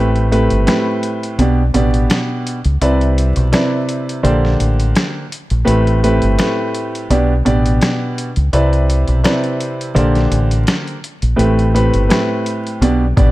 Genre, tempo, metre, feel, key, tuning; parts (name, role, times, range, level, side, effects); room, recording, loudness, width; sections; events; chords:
hip hop, boom-bap hip-hop; 84 BPM; 4/4; swing 55% on 16ths; C major; A4 = 440 Hz
warm upright piano; accompaniment; 0.0-13.3 s; A2 to D5; -16 LUFS; right 1 dB; cassette tape, high-pass filter, low-pass filter
deep dub fingered electric bass; bass; 0.0-13.3 s; G1 to Db2; -14 LUFS; equal
dusty soul sampler-style drum kit; drums; 0.2-13.3 s; hi-hat, kick drum, snare drum; -19 LUFS; equal
little or no reverb; dark, warm production, vinyl crackle; -13 LUFS; side -17 dB against mid
0.0-13.3 A section
break 0.0-11.4; kick muted 11.4-12.8
0.0 Am7; 1.4 G; 2.8 Cmaj7; 4.2 Bb6; 5.7 Am7; 7.1 G; 8.5 Cmaj7; 10.0 Bb6; 11.4 Am7; 12.8 G